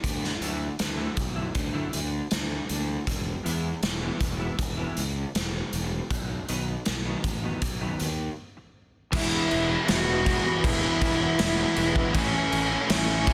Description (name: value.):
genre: quiet-loud alternative rock.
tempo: 79 BPM.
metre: 4/4.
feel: straight.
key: E major.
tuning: A4 = 440 Hz.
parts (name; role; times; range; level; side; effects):
fuzz fingered electric bass; bass; 0.0-13.3 s; E1 to E2; -34 LUFS; equal; overdrive.
raw garage drum kit; drums; 0.0-13.3 s; crash cymbal, hi-hat, kick drum, snare drum; -30 LUFS; equal; none.
clean electric guitar; arpeggios; 0.2-8.6 s; D3 to E4; -36 LUFS; equal; ensemble chorus.
dark cello; melody; 9.1-13.3 s; C#4 to F#4; -30 LUFS; equal; none.
dark studio string section; sustained chords; 9.1-13.3 s; G#4 to C#6; -42 LUFS; equal; none.
overdriven electric guitar; riff; 9.1-13.3 s; A2 to E4; -35 LUFS; equal; none.
sludgy distorted guitar; riff; 9.1-13.3 s; A2 to E4; -35 LUFS; equal; none.
thick fuzz guitar; riff; 9.1-13.3 s; A2 to E4; -36 LUFS; equal; none.
room: light reverb.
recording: dense, heavily limited modern master.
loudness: -27 LUFS.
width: mono.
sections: 0.0-9.1 A section; 9.1-13.3 B section.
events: break 8.4-9.1.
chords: 0.0 Dadd9; 3.1 E; 6.1 B; 9.1 E; 12.2 A.